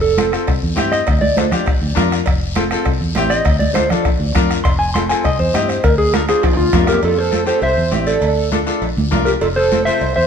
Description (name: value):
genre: latin, cumbia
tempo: 201 BPM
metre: 4/4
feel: straight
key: F major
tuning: A4 = 440 Hz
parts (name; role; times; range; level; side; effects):
- mellow electric guitar; melody; 0.0-10.3 s; F4 to C6; -17 LUFS; right 1 dB; spring reverb
- fingered electric bass; bass; 0.0-10.3 s; F1 to G2; -21 LUFS; equal; none
- bright upright piano; accompaniment; 0.2-10.0 s; C4 to C5; -21 LUFS; left 5 dB; none
- bombo; percussion; 0.2-7.0 s; none; -20 LUFS; left 1 dB; none
- congas; percussion; 0.2-9.9 s; none; -23 LUFS; right 4 dB; none
- cowbell and timbales; percussion; 0.2-10.2 s; none; -28 LUFS; right 4 dB; none
- guiro; percussion; 0.2-10.3 s; none; -30 LUFS; left 4 dB; none
- accordion; second line; 6.9-10.3 s; F4 to C5; -25 LUFS; right 1 dB; light tremolo tuning
room: moderate stone room reverb, RT60 1.1 s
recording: band playing live in one room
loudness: -13 LUFS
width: side -7 dB against mid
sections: 0.0-7.0 A section; 7.0-10.3 B section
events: clean electric guitar solo 0.0-7.0; drum fill 6.4-7.0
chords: 0.5 C; 1.1 Dm; 1.7 Bb; 2.3 F; 2.9 C; 3.5 Dm; 4.1 Bb; 4.6 F; 5.2 C; 5.8 Dm; 6.4 Bb; 7.0 F; 7.6 C; 8.2 Dm; 8.8 Bbadd9; 9.4 F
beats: 0.17 0.47 0.77 | 1.07 1.37 1.67 1.97 | 2.26 2.56 2.86 3.16 | 3.46 3.75 4.05 4.35 | 4.65 4.95 5.24 5.54 | 5.84 6.14 6.43 6.73 | 7.03 7.33 7.62 7.92 | 8.22 8.52 8.82 9.11 | 9.41 9.71 10.01